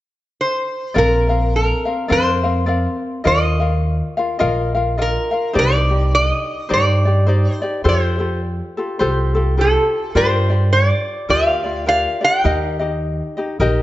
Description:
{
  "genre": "Hawaiian",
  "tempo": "104 BPM",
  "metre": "4/4",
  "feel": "swing 61% on 8ths",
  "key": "Bb major",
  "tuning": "A4 = 440 Hz",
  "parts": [
    { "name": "metal-body resonator slide guitar", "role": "melody", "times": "0.4-13.8 s", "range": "A4 to G5", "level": "-18 LUFS", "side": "right 1 dB", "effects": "none" },
    { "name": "ukulele", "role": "accompaniment", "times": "0.9-13.8 s", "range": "C4 to F5", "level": "-21 LUFS", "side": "left 2 dB", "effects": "none" },
    { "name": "upright bass", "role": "bass", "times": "1.0-13.8 s", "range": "Bb1 to G2", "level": "-18 LUFS", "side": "equal", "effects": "none" }
  ],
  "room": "light reverb",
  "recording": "nothing above 7.9 kHz",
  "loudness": "-15 LUFS",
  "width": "side -15 dB against mid",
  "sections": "1.0-13.8 A section",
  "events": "none",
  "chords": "0.0 N.C.; 1.0 Bbadd9; 3.3 Ebsus2; 5.5 Cmadd9; 7.8 Fadd9; 10.2 Gm7; 12.5 Eb",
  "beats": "0.38 | 0.96 1.53 2.10 2.68 | 3.25 3.83 4.40 4.97 | 5.55 6.12 6.70 7.27 | 7.85 8.43 9.00 9.58 | 10.15 10.73 11.30 11.88 | 12.46 13.03 13.61"
}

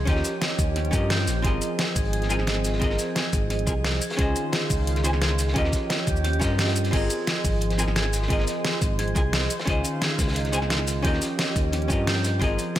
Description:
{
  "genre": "liquid drum and bass",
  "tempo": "175 BPM",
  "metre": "4/4",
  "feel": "straight",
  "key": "Ab major",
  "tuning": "A4 = 436 Hz",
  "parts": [
    { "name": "lush unison pad", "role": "sustained chords", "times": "0.0-12.8 s", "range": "Eb3 to C5", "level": "-32 LUFS", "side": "left 1 dB", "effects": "chorus, sidechain pumping" },
    { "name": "vibraphone with medium hard mallets", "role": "arpeggios", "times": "0.0-12.6 s", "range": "G4 to Eb5", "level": "-32 LUFS", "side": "right 4 dB", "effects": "dub echo" },
    { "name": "smooth synth bass", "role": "bass", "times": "0.0-12.6 s", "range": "Ab1 to G2", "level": "-26 LUFS", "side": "equal", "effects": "none" },
    { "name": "archtop guitar, miked and amplified", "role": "accompaniment", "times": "0.1-12.8 s", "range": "C4 to Ab5", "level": "-30 LUFS", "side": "left 1 dB", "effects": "ping-pong delay" },
    { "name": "crunchy breakbeat drum kit", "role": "drums", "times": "0.1-12.8 s", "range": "hi-hat, snare drum", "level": "-36 LUFS", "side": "equal", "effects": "high-pass filter on hats, high-pass filter on snare, high-pass filter on room" },
    { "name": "electronic kick drum", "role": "drums", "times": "0.1-12.5 s", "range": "none", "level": "-26 LUFS", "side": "equal", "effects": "overdrive" },
    { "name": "pop drum kit", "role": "drums", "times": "0.1-12.8 s", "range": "crash cymbal, hi-hat, shaker, snare drum", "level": "-28 LUFS", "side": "equal", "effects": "overdrive" }
  ],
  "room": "little or no reverb",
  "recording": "none",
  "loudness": "-22 LUFS",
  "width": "side -12 dB against mid",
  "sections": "0.0-12.8 A section",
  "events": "none",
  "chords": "0.1 Eb9; 1.4 Ab6; 4.0 Dbmaj9; 5.6 Eb9; 6.9 Ab6; 9.5 Dbmaj9; 11.0 Eb9",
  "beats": "| 0.07 0.42 0.76 1.10 | 1.45 1.79 2.13 2.47 | 2.82 3.16 3.50 3.85 | 4.19 4.53 4.87 5.22 | 5.56 5.90 6.25 6.59 | 6.93 7.27 7.62 7.96 | 8.30 8.64 8.99 9.33 | 9.67 10.02 10.36 10.70 | 11.04 11.39 11.73 12.07 | 12.42 12.76"
}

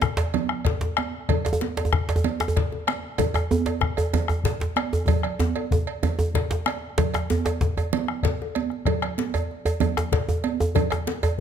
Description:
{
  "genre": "west african traditional, West African drum ensemble",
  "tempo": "127 BPM (dotted quarters)",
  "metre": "12/8",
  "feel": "straight",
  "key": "none",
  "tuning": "none",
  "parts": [
    { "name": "bombo", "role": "percussion", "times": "0.0-11.3 s", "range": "none", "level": "-26 LUFS", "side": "left 4 dB", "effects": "none" },
    { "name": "congas", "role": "percussion", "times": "0.0-11.2 s", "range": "none", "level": "-29 LUFS", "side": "right 8 dB", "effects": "none" },
    { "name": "djembe", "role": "percussion", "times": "0.0-11.4 s", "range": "none", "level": "-30 LUFS", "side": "left 8 dB", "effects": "none" },
    { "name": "djembe", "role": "percussion", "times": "0.0-11.4 s", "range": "none", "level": "-25 LUFS", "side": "right 1 dB", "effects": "none" },
    { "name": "cowbell", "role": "percussion", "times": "0.2-11.4 s", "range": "none", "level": "-33 LUFS", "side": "right 10 dB", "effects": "none" }
  ],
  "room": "moderate recital hall reverb, RT60 1.9 s",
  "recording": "close, detailed microphones",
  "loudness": "-22 LUFS",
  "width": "side -8 dB against mid",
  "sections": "0.0-7.0 A section; 7.0-11.4 B section",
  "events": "drum fill 5.1-7.0",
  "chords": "none",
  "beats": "0.34 0.81 | 1.29 1.76 2.24 2.71 | 3.19 3.66 4.13 4.61 | 5.08 5.56 6.03 6.50 | 6.98 7.45 7.92 8.40 | 8.87 9.34 9.81 10.29 | 10.76 11.23"
}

